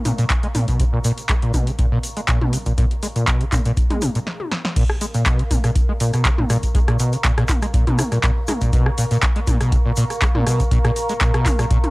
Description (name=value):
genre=acid house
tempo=121 BPM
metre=4/4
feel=swing 53% on 16ths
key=Bb phrygian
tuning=A4 = 440 Hz
part: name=warbly tape-like pad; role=texture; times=0.0-11.9 s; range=Bb4 to Db6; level=-31 LUFS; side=right 1 dB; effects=chorus, built-in reverb, sidechain pumping
part: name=overdriven acid bass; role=riff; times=0.1-11.8 s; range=Bb2 to Ab3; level=-21 LUFS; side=equal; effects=ensemble chorus, cassette tape, sidechain pumping
part: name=electro analog drum machine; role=drums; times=0.1-11.9 s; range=crash cymbal, handclaps, hi-hat, rim click, snare drum, toms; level=-24 LUFS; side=equal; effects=none
part: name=tube shaker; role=percussion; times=0.1-11.8 s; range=none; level=-34 LUFS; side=left 1 dB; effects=none
part: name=electronic kick drum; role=drums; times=0.3-11.8 s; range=none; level=-19 LUFS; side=equal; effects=none
room=little or no reverb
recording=dry, gritty hardware recording, cassette tape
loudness=-16 LUFS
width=side -22 dB against mid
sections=0.0-4.8 A section; 4.8-11.9 B section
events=drum fill 4.3-4.8; stop 4.3-4.8; band accent 4.6; drop 4.8-11.9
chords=0.0 Bbm